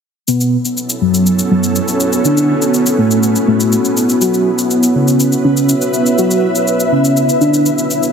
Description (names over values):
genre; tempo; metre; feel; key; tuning
melodic techno; 122 BPM; 4/4; straight; unclear; A4 = 440 Hz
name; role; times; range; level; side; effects
wide unison lead; melody; 0.3-7.7 s; F#3 to F#4; -14 LUFS; equal; tape echo
dark analog pad; sustained chords; 0.8-8.1 s; B3 to C#5; -18 LUFS; right 2 dB; chorus
shaker; drums; 0.3-8.1 s; none; -21 LUFS; left 2 dB; none
ethereal airy pad; texture; 0.9-8.1 s; B3 to E5; -17 LUFS; equal; ensemble chorus, built-in reverb
room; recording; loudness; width
wet lush hall reverb, RT60 2.5 s; heavily compressed radio sound; -11 LUFS; side -6 dB against mid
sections
0.3-8.1 A section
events
filter sweep on analog synth lead 0.3-8.1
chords
0.3 Bsus2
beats
| 0.28 0.77 1.26 1.75 | 2.25 2.74 3.23 3.72 | 4.21 4.71 5.20 5.69 | 6.18 6.67 7.17 7.66